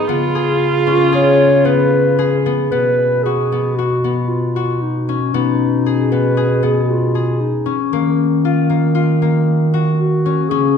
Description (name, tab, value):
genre	contemporary instrumental, chamber music in an uneven meter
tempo	115 BPM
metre	5/4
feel	straight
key	B lydian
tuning	A4 = 440 Hz
part	dark viola	second line	0.0-2.4 s	E#4	-19 LUFS	right 4 dB	none
part	concert harp	arpeggios	0.0-10.8 s	A#3 to G#4	-18 LUFS	left 7 dB	none
part	dark bass clarinet	bass	0.1-10.8 s	B2 to D#3	-18 LUFS	right 1 dB	none
part	dark clarinet	melody	0.9-10.8 s	D#4 to C#5	-18 LUFS	equal	none
room	wet recital hall reverb, RT60 1.4 s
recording	dark, warm production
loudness	-13 LUFS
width	side -7 dB against mid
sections	0.0-2.7 A section; 2.7-10.8 B section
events	none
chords	0.1 C#7; 2.7 B5; 7.9 D#madd9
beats	| 0.08 0.60 1.12 1.65 2.18 | 2.71 3.24 3.77 4.29 4.81 | 5.33 5.85 6.37 6.88 7.40 | 7.91 8.43 8.95 9.47 9.99 | 10.51